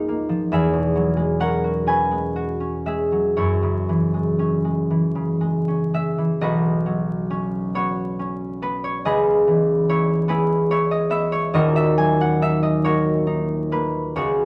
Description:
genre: classical, solo harp piece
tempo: 39-49 BPM (dotted quarters)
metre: 6/8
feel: rubato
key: B major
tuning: A4 = 440 Hz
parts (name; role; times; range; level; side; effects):
- concert harp; solo; 0.0-14.4 s; D#1 to A#5; -21 LUFS; equal; none
room: wet stone room reverb, RT60 0.9 s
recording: vinyl crackle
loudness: -21 LUFS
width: mono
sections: 0.0-6.4 A section; 6.4-14.4 B section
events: none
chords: 0.0 C#69; 0.5 E69; 3.4 F#9sus4; 6.4 Badd9; 9.0 C#m7; 11.5 D#m7

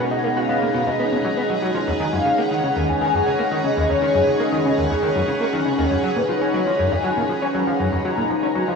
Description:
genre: ambient, sequencer-driven space music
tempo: 119 BPM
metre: 4/4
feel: straight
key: unclear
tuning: A4 = 441 Hz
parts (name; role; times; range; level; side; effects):
- mellow horn-like synth lead; melody; 0.0-8.8 s; B4 to A#5; -24 LUFS; left 3 dB; ensemble chorus, shimmer reverb, tape echo
- string machine, full ensemble; sustained chords; 0.0-8.8 s; B2 to G#5; -21 LUFS; equal; ensemble chorus, cassette tape, shimmer reverb
- plucky analog bass; riff; 0.0-8.7 s; D#2 to F#4; -23 LUFS; equal; lush chorus, cassette tape, shimmer reverb, tape echo
- bubbling stepped-filter texture; texture; 0.0-8.8 s; B4 to A#5; -31 LUFS; left 1 dB; chorus, built-in reverb, cassette tape, shimmer reverb
room: wet studio reverb, RT60 0.5 s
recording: home recording on cassette, small room ambience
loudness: -18 LUFS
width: side -5 dB against mid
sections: 0.0-8.8 A section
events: none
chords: 0.0 Bmaj7; 1.9 D#m7; 5.9 F#6

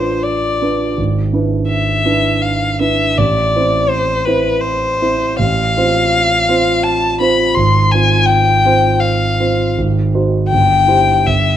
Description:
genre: classical, romantic duo for violin and grand piano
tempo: 82 BPM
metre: 3/4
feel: rubato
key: A minor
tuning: A4 = 439 Hz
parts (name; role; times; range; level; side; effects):
- rich violin; melody; 0.0-11.6 s; B4 to C6; -14 LUFS; left 3 dB; none
- dark concert grand piano; accompaniment; 0.0-11.6 s; G1 to C5; -14 LUFS; right 2 dB; none
room: moderate recital hall reverb, RT60 1.2 s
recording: close, detailed microphones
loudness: -12 LUFS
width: side -10 dB against mid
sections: 0.0-11.6 A section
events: none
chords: 0.0 Bm7b5/A; 1.0 E7/G#; 3.2 Am; 5.4 F/A; 7.6 Fm/Ab; 9.8 Ab7; 10.5 C/G

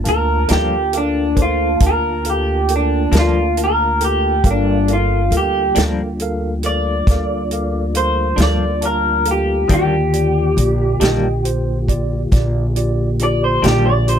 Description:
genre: slow blues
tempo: 46 BPM (dotted quarters)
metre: 12/8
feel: straight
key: G minor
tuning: A4 = 439 Hz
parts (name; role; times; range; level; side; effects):
- tine electric piano; accompaniment; 0.0-14.2 s; F4 to A5; -26 LUFS; right 2 dB; fast stereo tremolo
- mellow tonewheel organ; sustained chords; 0.0-14.2 s; D3 to A5; -25 LUFS; left 1 dB; chorus vibrato, slow rotary speaker
- electric guitar through a small old amp; melody; 0.1-14.2 s; D4 to D5; -18 LUFS; equal; wide subtle chorus
- upright bass; bass; 0.1-14.2 s; G1 to Eb2; -19 LUFS; equal; none
- warm soul drum kit; drums; 0.1-14.2 s; hi-hat, kick drum, snare drum; -18 LUFS; equal; none
- semi-hollow electric guitar; accompaniment; 0.5-13.9 s; G2 to D4; -22 LUFS; left 6 dB; tremolo
room: light reverb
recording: none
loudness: -14 LUFS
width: side -8 dB against mid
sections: 0.0-14.2 A section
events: clean electric guitar solo 0.0-14.2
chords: 0.0 Gm7; 9.7 Ebmaj7

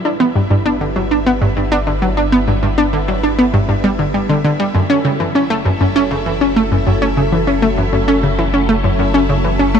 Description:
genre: ambient, sequencer-driven space music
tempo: 99 BPM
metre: 4/4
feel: straight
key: F# phrygian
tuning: A4 = 444 Hz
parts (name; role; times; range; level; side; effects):
- phased string machine; sustained chords; 0.0-9.8 s; F#3 to B4; -23 LUFS; equal; ensemble chorus, phaser
- round analog bass; bass; 0.0-9.8 s; F#1 to G1; -22 LUFS; equal; none
- bubbling stepped-filter texture; texture; 0.0-9.8 s; E4 to E5; -27 LUFS; left 1 dB; chorus, built-in reverb
- analog pluck; riff; 0.1-9.8 s; F#2 to D4; -14 LUFS; equal; chorus, cassette tape, tape echo
room: moderate huge ambient reverb, RT60 7.8 s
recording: cassette tape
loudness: -13 LUFS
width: side -7 dB against mid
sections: 0.0-9.8 A section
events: fade-in on string machine 0.0-9.8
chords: 0.0 G; 4.7 F#m

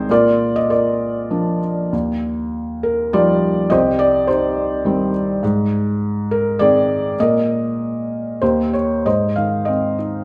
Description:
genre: classical, lyrical solo piano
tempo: 94-105 BPM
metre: 3/4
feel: rubato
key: Eb major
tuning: A4 = 440 Hz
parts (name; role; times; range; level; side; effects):
- felt-muted upright piano; solo; 0.0-10.2 s; C2 to F5; -18 LUFS; equal; none
room: wet recital hall reverb, RT60 1.4 s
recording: recorded in a church or concert hall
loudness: -18 LUFS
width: mono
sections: 0.0-9.0 A section; 9.0-10.2 B section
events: none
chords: 0.1 Bb; 1.9 Ebadd9; 3.7 Cm; 5.4 Ab; 7.2 N.C.; 8.4 Eb7; 9.0 Ab

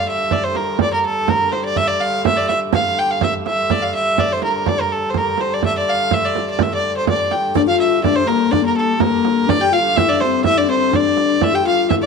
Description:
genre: medieval dance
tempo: 124 BPM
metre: 2/4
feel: straight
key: G dorian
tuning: A4 = 440 Hz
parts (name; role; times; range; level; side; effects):
- clear fiddle; melody; 0.0-12.1 s; A4 to G5; -18 LUFS; right 1 dB; none
- dark hurdy-gurdy; drone; 0.0-12.1 s; G2 to D3; -26 LUFS; left 2 dB; stereo widening
- frame drum; percussion; 0.1-12.1 s; none; -21 LUFS; right 9 dB; none
- breathy mellow bass ocarina; second line; 7.5-12.1 s; Bb3 to G4; -17 LUFS; left 12 dB; none
room: moderate echo chamber reverb, RT60 1.7 s, small room reverb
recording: 1960s-style stereo with parts hard left and right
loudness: -15 LUFS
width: side -5 dB against mid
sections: 0.0-7.6 A section; 7.6-12.1 A section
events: none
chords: none

